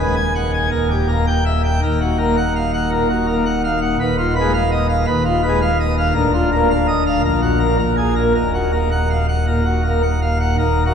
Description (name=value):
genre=classical, organ toccata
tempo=110 BPM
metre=4/4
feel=straight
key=Eb minor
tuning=A4 = 440 Hz
part: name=pipe organ, plenum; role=solo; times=0.0-10.9 s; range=D1 to G#5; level=-15 LUFS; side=equal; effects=none
room=wet cathedral reverb, RT60 4.8 s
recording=recorded in a church or concert hall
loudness=-15 LUFS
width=side -7 dB against mid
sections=0.0-10.6 A section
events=none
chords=0.0 G#m/D#; 0.7 D#; 1.8 Ebm; 4.0 Fm7b5/Eb; 6.2 Bb/D; 7.2 Gb/Bb; 7.8 Absus2/Bb; 8.3 Ebm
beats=0.17 0.72 1.28 | 1.83 2.38 2.92 3.46 | 4.00 4.54 5.07 5.61 | 6.15 6.69 7.24 7.79 | 8.35 8.91 9.47 10.03 | 10.59